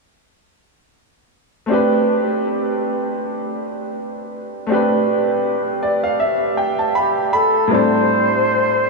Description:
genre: R&B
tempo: 80 BPM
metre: 4/4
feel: swing 55% on 16ths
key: A minor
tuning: A4 = 441 Hz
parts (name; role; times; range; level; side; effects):
- clear grand piano; accompaniment; 1.7-8.9 s; A2 to B5; -17 LUFS; right 1 dB; none
- breathy flugelhorn; melody; 7.0-8.9 s; G4 to C5; -17 LUFS; left 1 dB; analog delay
room: wet huge ambient reverb, RT60 8.0 s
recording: dreamy mix soaked in reverb, small room ambience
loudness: -16 LUFS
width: side -2 dB against mid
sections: 1.7-7.7 A section; 7.7-8.9 B section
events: grand piano fill 5.4-7.7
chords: 1.7 Am11; 7.3 N.C.; 7.7 Am11

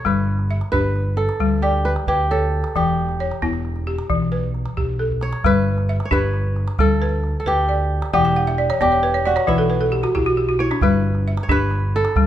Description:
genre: west african traditional, West African string and xylophone music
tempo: 89 BPM (dotted quarters)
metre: 12/8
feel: straight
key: G lydian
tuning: A4 = 440 Hz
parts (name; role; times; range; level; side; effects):
- kora; melody; 0.0-12.3 s; E4 to C#5; -22 LUFS; right 1 dB; none
- balafon; arpeggios; 0.0-12.3 s; E3 to G5; -21 LUFS; left 2 dB; none
- overdriven fingered electric bass; bass; 0.1-12.3 s; E1 to D2; -22 LUFS; equal; none
- calabash; percussion; 0.1-12.3 s; none; -26 LUFS; right 2 dB; none
room: light reverb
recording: minimal, uncompressed stereo recording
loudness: -17 LUFS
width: side -11 dB against mid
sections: 0.0-5.4 A section; 5.4-12.3 A section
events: drum fill 5.1-5.4; balafon fill 8.1-10.8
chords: 0.1 G; 2.8 Em; 5.4 G; 8.1 Em; 10.8 G

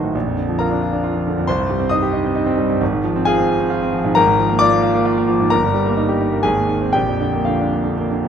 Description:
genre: classical, virtuoso piano study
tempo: 114-137 BPM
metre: 3/4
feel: rubato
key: unclear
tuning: A4 = 438 Hz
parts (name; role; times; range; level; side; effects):
- warm concert grand piano; solo; 0.0-8.3 s; G1 to Eb6; -15 LUFS; equal; none
room: light reverb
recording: close, detailed microphones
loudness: -15 LUFS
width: side -8 dB against mid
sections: 0.0-8.3 A section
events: none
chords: 0.1 Bb; 1.5 Cm; 2.8 Fm/Ab; 4.2 Bb7/Ab; 5.5 Eb/G; 6.4 Ab; 6.9 Bb

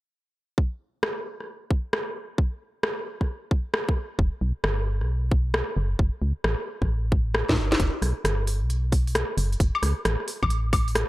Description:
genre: UK garage, two-step garage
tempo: 133 BPM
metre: 4/4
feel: swing 66% on 16ths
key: unclear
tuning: A4 = 443 Hz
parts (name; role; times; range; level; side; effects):
- electronic kick drum; drums; 0.6-10.8 s; none; -23 LUFS; equal; none
- garage drum kit; drums; 1.0-11.1 s; hi-hat, rim click, snare drum, woodblock; -27 LUFS; equal; none
- organ-like FM bass; bass; 4.2-11.0 s; E1 to A2; -25 LUFS; equal; tube saturation
room: little or no reverb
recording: dry, gritty hardware recording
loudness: -23 LUFS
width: side -17 dB against mid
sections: 0.6-7.8 A section; 7.8-11.1 B section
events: drum fill 7.5-7.8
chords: none

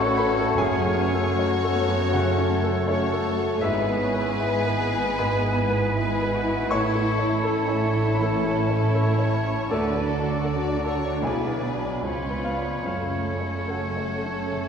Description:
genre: classical, romantic movement for piano and orchestra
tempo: 78 BPM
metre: 4/4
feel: uneven beats, rubato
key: F# minor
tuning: A4 = 438 Hz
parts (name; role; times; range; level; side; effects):
- clear studio violin section; melody; 0.0-14.7 s; A4 to D5; -33 LUFS; left 4 dB; none
- warm baby grand piano; melody; 0.0-14.7 s; B1 to C#6; -27 LUFS; equal; none
- bright oboe; second line; 0.0-14.7 s; B4 to D5; -33 LUFS; right 1 dB; none
- silver concert flute; second line; 0.0-14.7 s; F#5 to B5; -35 LUFS; left 1 dB; none
- warm clarinet; second line; 0.0-14.7 s; A3 to E4; -35 LUFS; left 2 dB; none
- warm symphonic violin section; second line; 0.0-14.7 s; C#4 to A4; -35 LUFS; left 2 dB; none
- mellow bassoon; accompaniment; 0.0-14.7 s; C#3 to B3; -34 LUFS; equal; none
- warm symphonic viola section; accompaniment; 0.0-14.7 s; A3 to E4; -33 LUFS; right 2 dB; none
- warm French horn section; sustained chords; 0.0-14.7 s; A3 to F#4; -31 LUFS; left 4 dB; none
- rich symphonic double bass section; bass; 0.0-14.7 s; F#1 to D2; -30 LUFS; right 1 dB; none
- warm symphonic cello section; bass; 0.0-14.7 s; C#2 to D3; -31 LUFS; right 3 dB; none
- timpani; percussion; 0.5-1.7 s; F#2; -34 LUFS; equal; none
room: wet concert hall reverb, RT60 2.2 s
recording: heard from further back in the room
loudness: -21 LUFS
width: side -7 dB against mid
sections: 0.0-14.7 A section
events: none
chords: 0.0 F#m/A; 0.6 F#m; 3.6 E/G#; 6.7 A; 9.7 D; 11.2 G#m7b5/B; 12.0 C#7b9; 12.9 F#m

